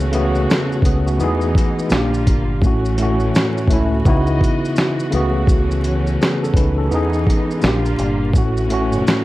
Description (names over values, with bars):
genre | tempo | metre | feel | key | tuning
lo-fi hip hop | 84 BPM | 4/4 | swing 60% on 16ths | unclear | A4 = 440 Hz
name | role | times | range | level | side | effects
mellow tine electric piano | accompaniment | 0.0-9.2 s | A2 to B4 | -19 LUFS | equal | medium stereo tremolo, cassette tape, low-pass filter
clear studio string section | sustained chords | 0.0-9.2 s | D3 to D#5 | -26 LUFS | equal | low-pass filter
deep dub fingered electric bass | bass | 0.0-9.0 s | G1 to E2 | -20 LUFS | equal | none
dusty soul sampler-style drum kit | drums | 0.0-9.2 s | hi-hat, kick drum, shaker, snare drum | -17 LUFS | equal | none
room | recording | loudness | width
light reverb | vinyl crackle | -15 LUFS | side -17 dB against mid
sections
0.0-9.2 A section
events
none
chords
0.0 A6/C#; 1.2 Emaj7; 1.9 A#6; 2.6 A6; 4.1 C#m11; 5.1 A6/C#; 6.9 Emaj7; 7.6 A#6; 8.3 A6